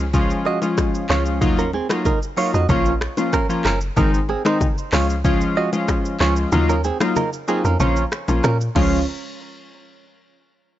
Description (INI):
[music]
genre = afrobeats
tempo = 94 BPM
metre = 4/4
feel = straight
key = Db major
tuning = A4 = 437 Hz
[part]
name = warm analog keys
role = accompaniment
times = 0.0-9.0 s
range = Eb3 to F4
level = -21 LUFS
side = left 2 dB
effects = chorus
[part]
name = woody log drum bass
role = bass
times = 0.0-9.1 s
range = Gb1 to Bb2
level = -21 LUFS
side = equal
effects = none
[part]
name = afro-pop drum kit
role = drums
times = 0.1-8.9 s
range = crash cymbal, finger snaps, handclaps, hi-hat, kick drum, rim click, shaker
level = -24 LUFS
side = equal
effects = none
[part]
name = congas and bongos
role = percussion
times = 0.1-9.1 s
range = none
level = -28 LUFS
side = left 2 dB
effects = none
[part]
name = direct-recorded clean electric guitar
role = riff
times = 0.5-9.1 s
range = C4 to Eb5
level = -24 LUFS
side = right 6 dB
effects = tape echo
[sound]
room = little or no reverb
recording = dry, gritty hardware recording, transformer saturation, nothing above 7.7 kHz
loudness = -17 LUFS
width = side -13 dB against mid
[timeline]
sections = 0.0-9.1 A section; 9.1-10.8 B section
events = kick muted 6.5-9.1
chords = 0.0 Db; 1.4 Ebmadd9; 2.7 Bbm; 4.0 Ab; 4.9 Db; 6.5 Ebmadd9; 7.8 Bbm; 8.8 Db; 9.1 N.C.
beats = 0.14 0.78 | 1.42 2.06 2.69 3.33 | 3.97 4.61 5.25 5.88 | 6.52 7.16 7.80 8.44